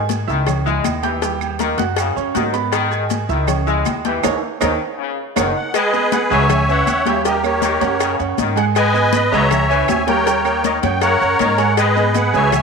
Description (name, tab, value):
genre	latin, salsa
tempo	159 BPM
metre	4/4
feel	straight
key	G# minor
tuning	A4 = 440 Hz
part	brilliant trombone section	second line	0.0-12.5 s	C#3 to G#3	-23 LUFS	left 8 dB	none
part	bright baby grand piano	accompaniment	0.0-12.6 s	G3 to G#6	-22 LUFS	right 11 dB	none
part	upright bass	bass	0.0-12.6 s	F#1 to G#2	-22 LUFS	equal	none
part	agogo bells and timbales	percussion	0.1-12.6 s	none	-27 LUFS	right 11 dB	none
part	congas	percussion	0.1-12.6 s	none	-26 LUFS	left 11 dB	none
part	cowbell	percussion	0.1-12.6 s	none	-27 LUFS	left 11 dB	none
part	maracas	percussion	0.1-12.6 s	none	-35 LUFS	right 13 dB	none
part	claves	percussion	0.5-12.6 s	none	-31 LUFS	right 13 dB	none
part	musette accordion	melody	5.6-12.6 s	G4 to B5	-17 LUFS	left 1 dB	none
room	moderate echo chamber reverb, RT60 1.6 s, studio reverb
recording	1960s-style stereo with parts hard left and right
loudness	-15 LUFS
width	side -4 dB against mid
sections	0.0-5.7 A section; 5.7-12.6 B section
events	drum fill 4.2-5.7; band accent 4.2-5.7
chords	0.5 C#m; 1.2 D#; 2.0 F#sus2; 2.7 G#m; 3.5 C#m; 4.2 D#5; 5.0 F#; 5.7 G#m; 6.5 C#m; 7.2 D#7; 8.0 F#add9; 8.8 G#m; 9.5 C#m; 10.3 D#7; 11.0 F#add9; 11.8 G#m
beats	0.09 0.47 0.85 | 1.22 1.60 1.98 2.35 | 2.73 3.11 3.48 3.86 | 4.24 4.61 4.99 5.37 | 5.74 6.12 6.50 6.87 | 7.25 7.63 8.00 8.38 | 8.76 9.13 9.51 9.89 | 10.26 10.64 11.02 11.40 | 11.77 12.15 12.53